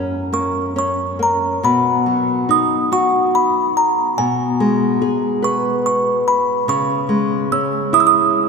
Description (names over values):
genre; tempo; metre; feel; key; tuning
children's music, lullaby; 48 BPM (dotted quarters); 6/8; rubato; B major; A4 = 439 Hz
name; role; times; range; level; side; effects
music box; melody; 0.0-8.5 s; G#5 to E6; -17 LUFS; right 2 dB; none
nylon-string guitar; accompaniment; 0.0-8.5 s; F#2 to B4; -18 LUFS; left 2 dB; none
room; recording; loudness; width
wet cathedral reverb, RT60 5.2 s; recorded in a church or concert hall; -15 LUFS; side -4 dB against mid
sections
0.0-1.6 A section; 1.6-8.5 B section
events
none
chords
0.0 F#; 1.6 B; 4.2 G#madd11/B; 6.7 C#madd9